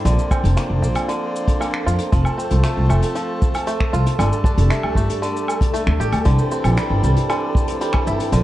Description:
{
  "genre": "folktronica",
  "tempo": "116 BPM",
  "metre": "4/4",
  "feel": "straight",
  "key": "C mixolydian",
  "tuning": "A4 = 441 Hz",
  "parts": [
    { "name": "hand-pumped harmonium", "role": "sustained chords", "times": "0.0-8.4 s", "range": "E3 to A4", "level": "-26 LUFS", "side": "equal", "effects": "none" },
    { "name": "bluegrass banjo", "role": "arpeggios", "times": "0.0-8.4 s", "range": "D3 to G4", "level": "-26 LUFS", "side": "equal", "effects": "low-pass filter, ping-pong delay" },
    { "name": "upright bass", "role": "bass", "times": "0.0-8.4 s", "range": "F1 to F2", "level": "-18 LUFS", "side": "equal", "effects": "none" },
    { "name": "flickering grainy texture", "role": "texture", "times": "0.0-8.4 s", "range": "A4 to A5", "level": "-29 LUFS", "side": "right 1 dB", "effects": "built-in reverb" },
    { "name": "vintage brush drum kit", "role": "drums", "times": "0.1-8.4 s", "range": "cabasa, finger snaps, hi-hat, woodblock", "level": "-28 LUFS", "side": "equal", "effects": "none" },
    { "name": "kick drum", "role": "drums", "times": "0.3-8.0 s", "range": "none", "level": "-19 LUFS", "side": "equal", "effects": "none" }
  ],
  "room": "small room ambience",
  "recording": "dark, warm production, vinyl crackle, nothing above 10.4 kHz",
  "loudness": "-16 LUFS",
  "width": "side -14 dB against mid",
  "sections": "0.0-8.4 A section",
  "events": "none",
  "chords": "0.1 Bbadd9; 2.1 F; 4.2 Gsus2; 6.3 Cadd9"
}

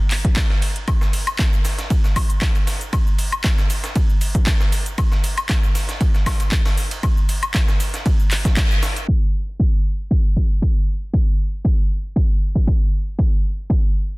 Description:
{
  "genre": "house",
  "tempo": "117 BPM",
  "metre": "4/4",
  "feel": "swing 53% on 16ths",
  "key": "none",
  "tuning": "none",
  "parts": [
    { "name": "breakbeat sampler-style drum kit", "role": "drums", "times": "0.1-9.1 s", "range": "hi-hat, ride cymbal, snare drum", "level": "-30 LUFS", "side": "right 1 dB", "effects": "sidechain pumping on cymbals, high-pass filter on cymbals, high-pass filter on snare, sidechain pumping on hats, high-pass filter on hats, high-pass filter on room" },
    { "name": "house drum kit", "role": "drums", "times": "0.1-14.2 s", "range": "handclaps, hi-hat, shaker, woodblock", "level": "-25 LUFS", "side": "left 1 dB", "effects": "overdrive, low-pass filter on hats, low-pass filter on snare, low-pass filter on perc, low-pass filter on room" },
    { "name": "electronic kick drum", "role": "drums", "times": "0.2-13.8 s", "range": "none", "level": "-17 LUFS", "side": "equal", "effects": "overdrive" }
  ],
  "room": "little or no reverb",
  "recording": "dense, heavily limited modern master, vinyl crackle, low-pass filter",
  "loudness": "-17 LUFS",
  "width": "side -24 dB against mid",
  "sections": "0.0-9.1 A section; 9.1-14.2 B section",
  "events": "band accent 8.6; filter sweep 9.1-14.2",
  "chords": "none"
}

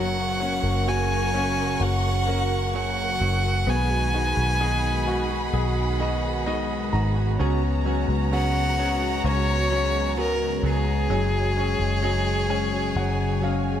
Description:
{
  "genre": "pop ballad",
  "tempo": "65 BPM",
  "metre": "4/4",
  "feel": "straight",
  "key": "F# major",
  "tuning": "A4 = 440 Hz",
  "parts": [
    { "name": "warm violin", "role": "melody", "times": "0.0-13.8 s", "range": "G#4 to G#5", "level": "-26 LUFS", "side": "equal", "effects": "none" },
    { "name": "warm studio violin section", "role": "second line", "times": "0.0-13.8 s", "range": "F#4 to C#6", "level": "-32 LUFS", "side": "equal", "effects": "none" },
    { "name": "clear concert grand piano", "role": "accompaniment", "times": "0.0-13.8 s", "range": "F#3 to A#5", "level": "-31 LUFS", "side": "left 5 dB", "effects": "none" },
    { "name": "chorused pulse-width pad", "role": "sustained chords", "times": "0.0-13.8 s", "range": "C#3 to G#4", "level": "-31 LUFS", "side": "left 1 dB", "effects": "none" },
    { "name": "direct-recorded clean electric guitar", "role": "arpeggios", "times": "0.0-13.8 s", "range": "F#2 to G#4", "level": "-32 LUFS", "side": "right 8 dB", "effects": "lush chorus" },
    { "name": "vintage muted fingered electric bass", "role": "bass", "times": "0.0-13.8 s", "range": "F#1 to C#2", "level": "-25 LUFS", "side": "equal", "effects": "none" }
  ],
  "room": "light reverb, small room ambience",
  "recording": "none",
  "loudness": "-21 LUFS",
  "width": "side -10 dB against mid",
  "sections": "0.0-13.8 A section",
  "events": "grand piano fill 6.0-7.4, 12.0-13.8",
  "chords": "0.0 F#; 3.7 B6; 7.4 C#7sus4; 11.1 F#sus2"
}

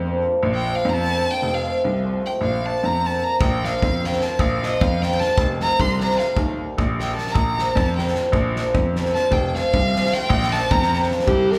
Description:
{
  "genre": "balkan folk, Balkan wedding band",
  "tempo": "304 BPM (eighths)",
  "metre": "5/8",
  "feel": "straight",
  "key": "Bb major",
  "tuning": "A4 = 436 Hz",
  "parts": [
    { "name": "cimbalom", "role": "accompaniment", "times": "0.0-11.6 s", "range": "E3 to G4", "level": "-26 LUFS", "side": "equal", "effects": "none" },
    { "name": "clear baby grand piano", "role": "bass", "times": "0.0-11.5 s", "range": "F1 to F2", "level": "-26 LUFS", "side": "equal", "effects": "none" },
    { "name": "clear violin", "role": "second line", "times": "0.5-11.6 s", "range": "E4 to C6", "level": "-27 LUFS", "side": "equal", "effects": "none" },
    { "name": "loose indie drum kit", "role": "percussion", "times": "3.4-11.6 s", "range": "kick drum, snare drum", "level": "-26 LUFS", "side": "equal", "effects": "none" },
    { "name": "warm alto saxophone", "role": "melody", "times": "11.3-11.6 s", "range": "G4 to Bb4", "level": "-20 LUFS", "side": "equal", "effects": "none" }
  ],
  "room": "wet recital hall reverb, RT60 1.8 s",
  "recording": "heard from further back in the room",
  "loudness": "-21 LUFS",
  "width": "mono",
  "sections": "0.0-11.3 A section",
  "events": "violin solo 0.0-11.3",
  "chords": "0.0 Bb; 1.4 F; 2.4 Bb; 5.4 F; 6.4 Eb; 7.4 Bb; 9.3 F; 10.3 Bb"
}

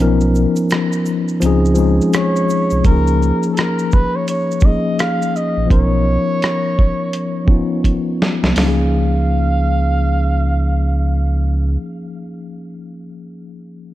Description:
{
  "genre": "lo-fi hip hop",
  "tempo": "84 BPM",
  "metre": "4/4",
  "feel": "swing 62% on 16ths",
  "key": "Db mixolydian",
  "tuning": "A4 = 439 Hz",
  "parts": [
    { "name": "mellow tine electric piano", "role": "accompaniment", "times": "0.0-13.9 s", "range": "F3 to Bb4", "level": "-18 LUFS", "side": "left 2 dB", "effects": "medium stereo tremolo, cassette tape" },
    { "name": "sub bass with octave", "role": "bass", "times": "0.0-11.8 s", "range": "Bb1 to Db2", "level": "-16 LUFS", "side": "right 1 dB", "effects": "none" },
    { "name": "dusty soul sampler-style drum kit", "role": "drums", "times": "0.2-8.8 s", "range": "hi-hat, kick drum, rim click, shaker, snare drum", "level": "-17 LUFS", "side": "right 1 dB", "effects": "none" },
    { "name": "egg shaker", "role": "percussion", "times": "0.3-2.8 s", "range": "none", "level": "-41 LUFS", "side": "right 7 dB", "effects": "none" },
    { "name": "trumpet with bucket mute", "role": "melody", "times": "2.1-11.8 s", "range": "A4 to F5", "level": "-22 LUFS", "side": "right 1 dB", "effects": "none" }
  ],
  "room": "light reverb",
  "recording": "dark, warm production",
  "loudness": "-14 LUFS",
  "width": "side -14 dB against mid",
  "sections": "0.0-2.8 A section; 2.8-8.6 B section; 8.6-11.4 C section",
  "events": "break 0.0-2.8; drum fill 7.8-8.6",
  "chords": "0.0 Cbmaj9#11; 1.4 Dbmaj9; 2.8 Db69; 5.7 Cbmaj9#11; 8.6 Db69"
}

